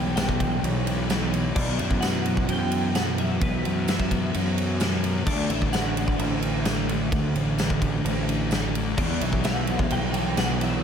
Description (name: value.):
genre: rock, shoegaze and dream pop.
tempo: 129 BPM.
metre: 4/4.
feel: straight.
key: E minor.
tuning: A4 = 440 Hz.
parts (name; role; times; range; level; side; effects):
twelve-string electric guitar; melody; 0.0-10.8 s; B4 to G5; -34 LUFS; equal; ensemble chorus, tape echo.
overdriven semi-hollow guitar; riff; 0.0-10.8 s; E2 to G4; -30 LUFS; right 11 dB; reverse reverb.
thick fuzz guitar; riff; 0.0-10.8 s; E2 to D4; -29 LUFS; left 10 dB; distortion, analog chorus.
fuzz fingered electric bass; bass; 0.0-10.8 s; A1 to F#2; -27 LUFS; equal; overdrive.
huge arena drum kit; drums; 0.2-10.7 s; crash cymbal, kick drum, ride cymbal, snare drum; -27 LUFS; equal; none.
tambourine; percussion; 0.2-10.5 s; none; -42 LUFS; right 12 dB; none.
overdriven electric guitar; riff; 9.0-10.8 s; E2 to E3; -33 LUFS; right 1 dB; lush chorus.
room: light reverb, small room reverb.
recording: none.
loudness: -22 LUFS.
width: side -7 dB against mid.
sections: 0.0-10.8 A section.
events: none.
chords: 0.0 Em; 1.6 Bsus4; 5.3 Dadd9; 9.0 Em.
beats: 0.17 0.64 1.10 | 1.56 2.03 2.49 2.95 | 3.42 3.88 4.34 4.81 | 5.27 5.73 6.20 6.66 | 7.12 7.59 8.05 8.52 | 8.98 9.45 9.91 10.38.